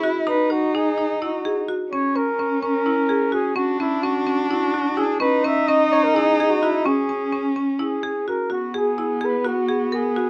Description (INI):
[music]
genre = contemporary instrumental, chamber music in an uneven meter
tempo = 255 BPM (eighths)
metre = 7/8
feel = straight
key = unclear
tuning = A4 = 437 Hz
[part]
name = warm cello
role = second line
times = 0.0-10.3 s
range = B3 to E4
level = -26 LUFS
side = equal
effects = none
[part]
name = marimba with hard mallets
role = arpeggios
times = 0.0-10.3 s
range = C#4 to A#4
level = -26 LUFS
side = equal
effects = none
[part]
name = warm flugelhorn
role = melody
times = 0.3-10.3 s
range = E4 to E5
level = -26 LUFS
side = equal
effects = none
[sound]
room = light reverb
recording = none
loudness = -21 LUFS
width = mono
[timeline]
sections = 0.0-8.5 A section; 8.5-10.3 B section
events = none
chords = 0.3 Emaj7 (rootless); 1.9 F# (rootless); 3.6 E7sus2/C#; 5.2 C#5; 8.5 Eadd9